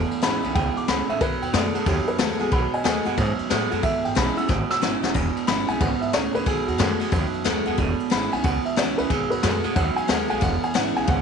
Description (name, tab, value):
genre	rockabilly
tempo	182 BPM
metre	4/4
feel	swing 64% on 8ths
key	E major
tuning	A4 = 440 Hz
part	picked steel-string acoustic guitar	accompaniment	0.0-11.2 s	E2 to F#4	-29 LUFS	left 10 dB	none
part	electric guitar through a small old amp	riff	0.0-11.2 s	E2 to G#3	-26 LUFS	right 15 dB	none
part	upright bass	bass	0.0-11.2 s	E1 to A2	-28 LUFS	right 1 dB	none
part	jazz brush drum kit	drums	0.1-11.2 s	crash cymbal, kick drum, ride cymbal, snare drum	-26 LUFS	left 4 dB	none
part	dark upright piano	melody	0.2-11.2 s	F#4 to E6	-27 LUFS	right 1 dB	none
room	light reverb, small room ambience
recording	1960s-style stereo with parts hard left and right, nothing above 10.5 kHz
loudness	-20 LUFS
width	side -6 dB against mid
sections	0.0-5.2 A section; 5.2-11.2 B section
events	drum fill 4.5-5.2; upright piano solo 5.2-11.2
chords	0.0 E; 1.2 B7; 3.8 E; 6.5 B7; 7.8 E; 9.1 B7; 10.4 E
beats	0.23 0.55 0.88 | 1.21 1.54 1.87 2.19 | 2.52 2.85 3.18 3.51 | 3.84 4.17 4.50 4.82 | 5.15 5.48 5.81 6.14 | 6.47 6.80 7.13 7.46 | 7.79 8.11 8.44 8.77 | 9.10 9.43 9.76 10.09 | 10.42 10.75 11.08